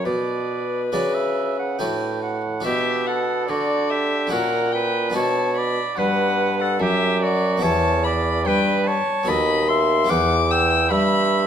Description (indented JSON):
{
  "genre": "classical, baroque-style sonata movement with continuo",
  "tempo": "72 BPM",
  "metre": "3/4",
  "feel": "straight",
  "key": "B minor",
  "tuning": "A4 = 439 Hz",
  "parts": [
    { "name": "dark violin", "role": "melody", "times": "0.0-11.5 s", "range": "B4 to E6", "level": "-24 LUFS", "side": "left 6 dB", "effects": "none" },
    { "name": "clear oboe", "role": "second line", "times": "0.0-11.5 s", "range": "F#4 to G5", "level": "-25 LUFS", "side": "right 6 dB", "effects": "none" },
    { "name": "harpsichord", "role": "accompaniment", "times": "0.1-11.5 s", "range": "D#2 to B4", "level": "-26 LUFS", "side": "left 2 dB", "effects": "none" },
    { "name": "warm bassoon", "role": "bass", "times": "0.1-11.5 s", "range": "D#2 to D3", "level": "-23 LUFS", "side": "right 2 dB", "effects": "none" }
  ],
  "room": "moderate recital hall reverb, RT60 1.5 s",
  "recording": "none",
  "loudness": "-18 LUFS",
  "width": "side -8 dB against mid",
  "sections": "0.0-2.6 A section; 2.6-11.5 B section",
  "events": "none",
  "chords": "0.0 Bm; 4.3 F#7/A#; 5.2 Bm; 7.6 Em; 9.3 B7/D#; 10.1 Em",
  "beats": "| 0.05 0.92 1.79 | 2.65 3.49 4.32 | 5.15 5.98 6.81 | 7.63 8.46 9.28 | 10.10 10.91"
}